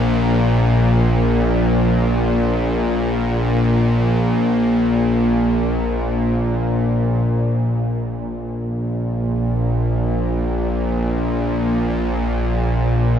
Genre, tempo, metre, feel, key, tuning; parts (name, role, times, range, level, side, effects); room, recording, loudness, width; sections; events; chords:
ambient; free time; A4 = 440 Hz
bowed-like drone; solo; 0.0-13.2 s; Bb1 to Bb2; -16 LUFS; equal; built-in reverb, ping-pong delay
wet huge ambient reverb, RT60 7.6 s; -16 LUFS; side -8 dB against mid
0.0-7.3 A section; 7.3-13.2 B section